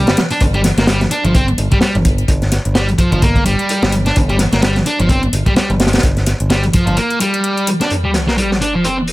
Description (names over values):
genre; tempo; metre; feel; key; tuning
breakbeat, breaks; 128 BPM; 4/4; swing 57% on 16ths; G minor; A4 = 440 Hz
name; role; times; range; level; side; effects
thick fuzz guitar; riff; 0.0-9.0 s; F3 to D4; -16 LUFS; equal; distortion, vintage 12-bit sampler grit, low-pass filter, digital delay
picked electric bass; bass; 0.0-7.0 s; G1; -16 LUFS; equal; none
crunchy breakbeat drum kit; drums; 0.1-9.1 s; hi-hat, kick drum, snare drum; -16 LUFS; equal; high-pass filter on kick, high-pass filter on hats, high-pass filter on snare, high-pass filter on room
electronic hi-hat; drums; 0.1-7.9 s; none; -26 LUFS; left 4 dB; none
sub drop; sound effects; 7.9-9.1 s; none; -22 LUFS; equal; none
room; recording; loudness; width
light reverb; none; -12 LUFS; side -18 dB against mid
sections
0.0-7.9 A section; 7.9-9.1 B section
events
impact 7.9-9.1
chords
0.0 N.C.; 7.9 Gm7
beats
| 0.41 0.88 1.35 1.81 | 2.28 2.75 3.22 3.69 | 4.16 4.63 5.10 5.57 | 6.03 6.50 6.97 7.44 | 7.91 8.38 8.85